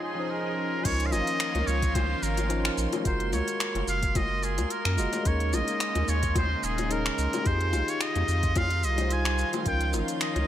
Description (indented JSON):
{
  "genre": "sunset chillout",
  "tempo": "109 BPM",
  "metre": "4/4",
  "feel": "swing 54% on 16ths",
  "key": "unclear",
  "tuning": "A4 = 440 Hz",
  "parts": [
    { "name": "trumpet with straight mute", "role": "melody", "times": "0.0-10.5 s", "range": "Ab4 to Ab5", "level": "-30 LUFS", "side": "equal", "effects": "digital delay" },
    { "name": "lush unison pad", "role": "sustained chords", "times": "0.0-10.5 s", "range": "Db3 to Ab4", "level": "-35 LUFS", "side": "equal", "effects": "chorus" },
    { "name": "drifting glass-harmonics texture", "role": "texture", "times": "0.0-10.5 s", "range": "C6", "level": "-40 LUFS", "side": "right 5 dB", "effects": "chorus, built-in reverb" },
    { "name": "tine electric piano", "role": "accompaniment", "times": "0.1-10.5 s", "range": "F3 to Eb5", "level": "-33 LUFS", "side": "equal", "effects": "auto-pan, digital delay" },
    { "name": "smooth R&B drum kit", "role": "drums", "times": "0.8-10.5 s", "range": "crash cymbal, finger snaps, hi-hat, shaker", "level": "-33 LUFS", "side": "equal", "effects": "overdrive, gated reverb" },
    { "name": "round analog bass", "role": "bass", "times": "0.9-10.4 s", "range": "Eb1 to Gb2", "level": "-28 LUFS", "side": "equal", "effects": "none" },
    { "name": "electronic kick drum", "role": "drums", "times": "0.9-9.8 s", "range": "none", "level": "-29 LUFS", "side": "equal", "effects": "overdrive" },
    { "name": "bongos", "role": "percussion", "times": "1.1-10.5 s", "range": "none", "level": "-36 LUFS", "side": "left 5 dB", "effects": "none" }
  ],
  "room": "light reverb",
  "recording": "bright 1980s-style digital production",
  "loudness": "-24 LUFS",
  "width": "side -11 dB against mid",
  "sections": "0.9-10.5 A section",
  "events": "none",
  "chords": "0.0 Eb9sus4; 0.9 Db69; 3.1 Gbmaj9; 5.3 Eb7sus4; 7.5 Fm9; 9.7 Db69"
}